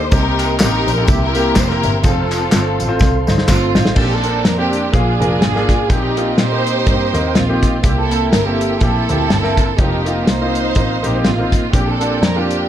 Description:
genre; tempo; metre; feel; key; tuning
uptempo gospel; 124 BPM; 4/4; swing 57% on 8ths; Bb major; A4 = 442 Hz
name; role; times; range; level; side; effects
warm studio string section; melody; 0.0-12.7 s; A3 to C5; -19 LUFS; right 1 dB; tape echo
clear concert grand piano; accompaniment; 0.0-12.6 s; Bb2 to F5; -22 LUFS; left 2 dB; none
percussive tonewheel organ; sustained chords; 0.0-12.7 s; Bb3 to D6; -25 LUFS; right 4 dB; fast rotary speaker
clear double bass; bass; 0.0-12.6 s; F1 to Bb2; -20 LUFS; equal; none
warm soul drum kit; drums; 0.1-12.6 s; crash cymbal, hi-hat, kick drum, snare drum; -16 LUFS; equal; none
tambourine and handclaps; percussion; 0.1-3.9 s; none; -26 LUFS; left 1 dB; none
room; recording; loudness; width
light reverb, small room ambience; dark, warm production; -13 LUFS; side -11 dB against mid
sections
0.0-4.0 A section; 4.0-12.7 B section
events
drum fill 3.0-4.0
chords
0.1 Cm7; 1.1 C7; 2.0 F; 4.0 Bbmaj9; 4.9 Bb7; 5.9 Eb6/Bb; 7.8 C7; 9.8 F7sus4; 11.7 Bb69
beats
| 0.12 0.60 1.08 1.56 | 2.04 2.52 3.00 3.49 | 3.97 4.45 4.93 5.42 | 5.90 6.38 6.87 7.35 | 7.84 8.32 8.81 9.29 | 9.78 10.27 10.75 11.24 | 11.73 12.21

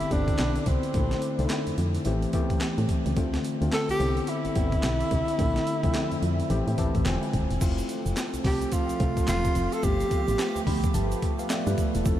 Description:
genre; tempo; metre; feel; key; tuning
R&B, new jack swing; 108 BPM; 4/4; swing 61% on 16ths; unclear; A4 = 442 Hz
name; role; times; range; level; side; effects
breathy tenor saxophone; melody; 0.0-10.9 s; C4 to A4; -31 LUFS; right 1 dB; diffuse ambient delay
tine electric piano; accompaniment; 0.0-12.2 s; D3 to B5; -30 LUFS; left 2 dB; none
solid FM bass; bass; 0.0-12.2 s; D#1 to A2; -28 LUFS; equal; none
breakbeat sampler-style drum kit; drums; 0.0-12.2 s; crash cymbal, handclaps, hi-hat, kick drum, snare drum; -29 LUFS; equal; none
warm analog pad; sustained chords; 7.6-12.2 s; F3 to A4; -32 LUFS; right 3 dB; chorus
tube shaker; percussion; 7.6-12.2 s; none; -45 LUFS; right 9 dB; none
room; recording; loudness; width
moderate huge ambient reverb, RT60 8.0 s; dreamy mix soaked in reverb; -24 LUFS; side -12 dB against mid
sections
0.0-7.6 A section; 7.6-12.2 B section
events
tine electric piano fill 5.9-7.6, 10.4-12.1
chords
0.0 Cmaj9; 0.9 Bbmaj9#11; 2.1 Am7; 3.2 Dm7; 4.0 Cmaj9; 5.4 Bbmaj9#11; 6.5 Am7; 7.1 E7b9b13; 7.6 Fmaj7; 9.8 G9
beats
0.39 | 0.94 1.50 2.06 2.61 | 3.17 3.72 4.28 4.83 | 5.39 5.95 6.50 7.06 | 7.61 8.17 8.72 9.28 | 9.83 10.39 10.95 11.50 | 12.06

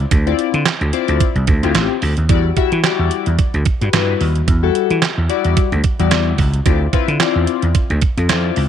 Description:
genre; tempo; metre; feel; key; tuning
early-eighties boogie funk; 110 BPM; 4/4; swing 56% on 16ths; E phrygian; A4 = 439 Hz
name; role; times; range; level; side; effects
vintage slap bass; bass; 0.0-8.7 s; A1 to E3; -16 LUFS; right 1 dB; none
detuned 8-bit digital drum machine; drums; 0.1-8.7 s; handclaps, hi-hat, kick drum, snare drum; -17 LUFS; right 3 dB; none
chorused polysynth; accompaniment; 0.3-8.6 s; G3 to E5; -20 LUFS; left 13 dB; none
room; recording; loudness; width
light reverb; 1960s-style stereo; -14 LUFS; side -9 dB against mid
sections
0.0-8.7 A section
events
none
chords
0.0 Dm9; 2.3 Em9; 6.7 Dm9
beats
| 0.11 0.66 1.20 1.75 | 2.29 2.84 3.39 3.93 | 4.48 5.02 5.57 6.11 | 6.66 7.20 7.75 8.29

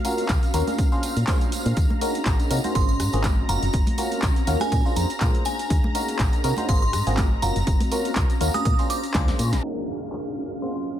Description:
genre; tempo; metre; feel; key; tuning
piano house; 122 BPM; 4/4; swing 55% on 16ths; Eb dorian; A4 = 440 Hz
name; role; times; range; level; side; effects
analog string pad; sustained chords; 0.0-11.0 s; F5 to Bb5; -36 LUFS; left 1 dB; ensemble chorus, sidechain pumping
barking FM electric piano; riff; 0.0-11.0 s; Bb3 to C5; -29 LUFS; left 1 dB; phaser, sidechain pumping, dub echo
punchy analog drum machine; drums; 0.0-10.2 s; crash cymbal, handclaps, hi-hat, rim click, snare drum; -32 LUFS; equal; low-pass filter on hats, low-pass filter on snare, low-pass filter on cymbals
tambourine and congas; percussion; 0.0-9.6 s; none; -33 LUFS; right 1 dB; none
granular cloud pad; texture; 0.0-11.0 s; Gb3 to Bb5; -31 LUFS; right 1 dB; built-in reverb, sidechain pumping
solid FM bass; bass; 0.3-9.6 s; Gb1 to C3; -24 LUFS; equal; tube saturation, sidechain pumping
electronic kick drum; drums; 0.3-9.3 s; none; -22 LUFS; equal; none
glassy synth bell; melody; 2.8-10.8 s; Ab5 to Eb6; -30 LUFS; right 2 dB; chorus, phaser, dub echo
downlifter; sound effects; 9.6-11.0 s; none; -36 LUFS; left 2 dB; none
room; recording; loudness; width
light reverb; low-pass filter; -20 LUFS; side -11 dB against mid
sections
0.0-9.6 A section; 9.6-11.0 B section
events
drum fill 9.1-9.6; band accent 9.5; filter sweep 9.6-11.0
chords
0.0 Gbmaj7; 0.8 Bb7; 1.8 Ebm7; 2.8 Ab13; 3.5 Gbmaj7; 4.7 Bb7; 5.7 Ebm7; 6.7 Ab13; 7.4 Gbmaj7; 8.7 Bb7; 9.6 Ebm7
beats
0.29 0.79 1.28 | 1.77 2.26 2.75 3.24 | 3.74 4.23 4.72 5.21 | 5.70 6.20 6.69 7.18 | 7.67 8.16 8.65 9.15 | 9.64 10.13 10.62

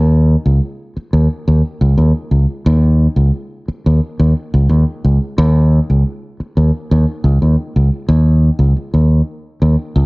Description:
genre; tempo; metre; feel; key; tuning
funk; 88 BPM; 4/4; straight; unclear; A4 = 438 Hz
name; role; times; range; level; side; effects
fingered electric bass; solo; 0.0-10.1 s; Db2 to Eb2; -11 LUFS; equal; cassette tape
room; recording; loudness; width
light reverb; home recording on cassette, nothing above 10.5 kHz; -11 LUFS; side -29 dB against mid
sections
0.0-10.1 A section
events
none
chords
none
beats
0.63 1.30 1.98 | 2.66 3.34 4.02 4.70 | 5.38 6.05 6.73 7.41 | 8.09 8.77 9.44

